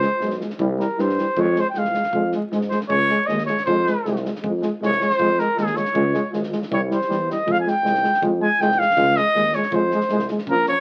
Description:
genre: balkan folk, Balkan brass band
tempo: 158 BPM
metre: 2/4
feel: straight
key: F minor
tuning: A4 = 441 Hz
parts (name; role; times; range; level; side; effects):
- warm trumpet; melody; 0.0-10.8 s; Ab4 to Ab5; -22 LUFS; equal; none
- mellow euphonium; accompaniment; 0.0-10.7 s; Db4 to F4; -34 LUFS; equal; none
- warm trombone; accompaniment; 0.0-10.8 s; F3 to Ab3; -28 LUFS; equal; none
- warm tuba; bass; 0.0-10.7 s; Ab1 to Ab2; -27 LUFS; equal; none
- loose indie drum kit; percussion; 0.0-10.7 s; kick drum, snare drum; -39 LUFS; equal; none
room: moderate studio reverb, RT60 0.8 s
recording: very old 78 rpm record, vinyl crackle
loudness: -21 LUFS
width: mono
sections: 0.0-10.5 A section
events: speeding up 0.0-10.8; trumpet solo 0.0-10.5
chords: 0.0 Db (rootless); 0.6 C; 1.4 Fm; 2.9 Db; 3.7 Fm; 6.0 Db; 6.7 C; 7.5 Fm; 9.0 Db; 9.7 Fm

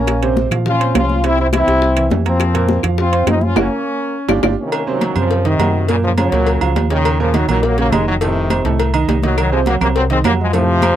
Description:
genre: latin, salsa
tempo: 207 BPM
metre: 4/4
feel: straight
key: unclear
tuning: A4 = 441 Hz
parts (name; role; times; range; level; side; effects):
- brilliant trombone section; melody; 0.0-11.0 s; Bb2 to F4; -18 LUFS; left 2 dB; none
- clear concert grand piano; accompaniment; 0.0-10.9 s; A2 to C6; -20 LUFS; right 6 dB; none
- fingered electric bass; bass; 0.0-10.9 s; F1 to Bb2; -18 LUFS; equal; none
- bongos and cowbell; percussion; 0.1-11.0 s; none; -24 LUFS; left 9 dB; none
- claves; percussion; 0.1-4.5, 9.4-11.0 s; none; -26 LUFS; left 29 dB; none
- congas; percussion; 0.1-11.0 s; none; -23 LUFS; left 1 dB; none
- timbales and agogo bells; percussion; 0.1-11.0 s; none; -23 LUFS; right 8 dB; none
room: little or no reverb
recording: dry, close 1970s-style studio recording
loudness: -13 LUFS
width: side -11 dB against mid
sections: 0.0-4.7 A section; 4.7-11.0 B section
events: drum fill 3.6-4.7; band accent 3.6-4.7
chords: 0.1 Bbmadd9; 1.2 C; 2.4 Fsus4; 3.0 F5; 3.6 Gb; 4.1 G5; 4.7 Cm7b5; 5.9 Gbmaj7; 7.0 Ebm7; 8.2 F7; 9.4 Cdim

